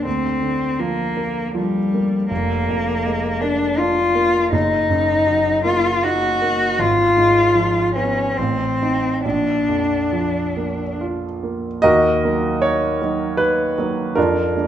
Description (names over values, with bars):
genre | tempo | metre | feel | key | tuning
classical, romantic duo for cello and grand piano | 68-83 BPM | 3/4 | rubato | Eb minor | A4 = 440 Hz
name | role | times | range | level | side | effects
rich cello | melody | 0.0-11.0 s | G3 to Gb4 | -18 LUFS | left 2 dB | none
warm concert grand piano | accompaniment | 0.0-14.7 s | F1 to Eb5 | -20 LUFS | right 2 dB | none
room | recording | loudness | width
wet recital hall reverb, RT60 1.4 s | none | -16 LUFS | side -10 dB against mid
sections
0.0-11.8 A section; 11.8-14.7 B section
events
none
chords
0.1 Bb/D; 2.3 Bb7/F; 4.5 Ebm/Gb; 6.8 Fdim/Ab; 8.4 Adim; 9.2 Bb; 11.8 Ebm; 14.2 Bb7/F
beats
| 0.06 0.79 1.55 | 2.30 3.04 3.79 | 4.53 5.28 6.03 | 6.79 7.55 8.37 | 9.24 10.12 10.99 | 11.82 12.62 13.39 | 14.16